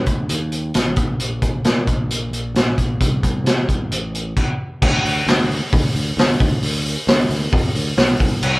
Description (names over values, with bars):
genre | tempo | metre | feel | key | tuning
classic rock | 133 BPM | 4/4 | straight | unclear | A4 = 440 Hz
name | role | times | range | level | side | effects
overdriven picked electric bass | bass | 0.0-8.6 s | A1 to C3 | -23 LUFS | equal | none
vintage drum kit | drums | 0.1-8.5 s | crash cymbal, hi-hat, kick drum, snare drum | -17 LUFS | equal | none
room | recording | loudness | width
light reverb | band playing live in one room | -16 LUFS | side -22 dB against mid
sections
0.0-4.8 A section; 4.8-8.6 B section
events
none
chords
none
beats
0.29 0.74 | 1.20 1.65 2.10 2.56 | 3.01 3.46 3.92 4.37 | 4.82 5.27 5.72 6.17 | 6.62 7.08 7.53 7.98 | 8.43